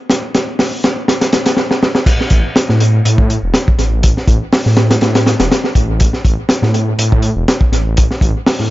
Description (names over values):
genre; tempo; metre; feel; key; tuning
breakbeat, breaks; 122 BPM; 4/4; swing 54% on 16ths; unclear; A4 = 440 Hz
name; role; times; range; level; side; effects
crunchy breakbeat drum kit; drums; 0.1-8.7 s; crash cymbal, hi-hat, kick drum, snare drum; -12 LUFS; equal; dub echo
dark detuned saw bass; bass; 2.3-8.7 s; E1 to A2; -14 LUFS; equal; tube saturation
room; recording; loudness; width
light reverb; echo-heavy mix, nothing above 7.6 kHz; -11 LUFS; side -16 dB against mid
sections
0.0-2.1 A section; 2.1-8.7 B section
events
build-up 0.0-2.1; drum fill 0.0-1.6, 1.6-2.1; drop 2.1-8.7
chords
none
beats
| 0.10 0.59 1.08 1.58 | 2.07 2.56 3.05 3.54 | 4.04 4.53 5.02 5.51 | 6.00 6.50 6.99 7.48 | 7.97 8.46